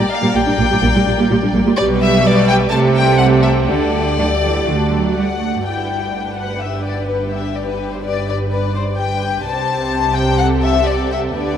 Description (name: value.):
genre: quick classical-period movement for string orchestra.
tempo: 126 BPM.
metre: 4/4.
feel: straight.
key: G major.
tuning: A4 = 442 Hz.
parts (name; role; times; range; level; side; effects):
warm symphonic violin section; melody; 0.0-11.6 s; A4 to A5; -22 LUFS; left 7 dB; none.
warm chamber violin section; second line; 0.0-11.6 s; D4 to A5; -21 LUFS; left 3 dB; none.
dark symphonic viola section; accompaniment; 0.0-11.6 s; G3 to B4; -20 LUFS; equal; none.
rich symphonic cello section; bass; 0.0-11.6 s; G2 to A3; -21 LUFS; right 4 dB; none.
dark symphonic double bass section; bass; 0.4-11.6 s; G1 to D2; -21 LUFS; right 2 dB; none.
room: wet huge ambient reverb, RT60 8.4 s.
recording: in a vast, echoing space.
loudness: -14 LUFS.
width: side -9 dB against mid.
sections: 0.0-5.7 A section; 5.7-11.6 B section.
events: none.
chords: 0.0 Gm/Bb; 1.8 G/B; 2.7 Am7/C; 3.7 Dsus4; 4.7 D; 5.7 G; 9.5 Am7/C.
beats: 0.36 0.83 1.31 | 1.78 2.25 2.72 3.19 | 3.68 4.17 4.66 5.16 | 5.65 6.13 6.61 7.09 | 7.56 8.04 8.52 8.99 | 9.46 9.93 10.40 10.88 | 11.36.